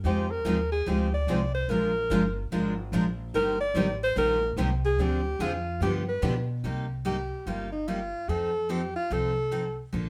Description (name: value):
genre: acoustic string swing (jazz manouche)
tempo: 146 BPM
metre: 4/4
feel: swing 62% on 8ths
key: unclear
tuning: A4 = 435 Hz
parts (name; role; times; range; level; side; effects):
- picked steel-string acoustic guitar; accompaniment; 0.0-10.1 s; C3 to Bb4; -33 LUFS; equal; none
- picked steel-string acoustic guitar; accompaniment; 0.0-6.3 s; D3 to C5; -34 LUFS; equal; none
- upright bass; bass; 0.0-10.1 s; G1 to B2; -33 LUFS; equal; none
- breathy alto saxophone; melody; 0.1-9.8 s; Eb4 to D5; -31 LUFS; equal; none
room: wet studio reverb, RT60 0.6 s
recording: heard from further back in the room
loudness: -28 LUFS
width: mono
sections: 0.0-6.6 A section; 6.6-10.1 B section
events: alto saxophone solo 6.6-10.1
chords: 0.0 Fm7; 1.7 Bb7; 3.3 Eb6; 5.0 Dm7b5; 5.8 G7; 6.6 Cm7; 8.3 F7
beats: | 0.04 0.45 0.86 1.28 | 1.69 2.10 2.51 2.93 | 3.34 3.75 4.16 4.58 | 4.99 5.40 5.81 6.22 | 6.63 7.05 7.46 7.87 | 8.28 8.70 9.11 9.52 | 9.93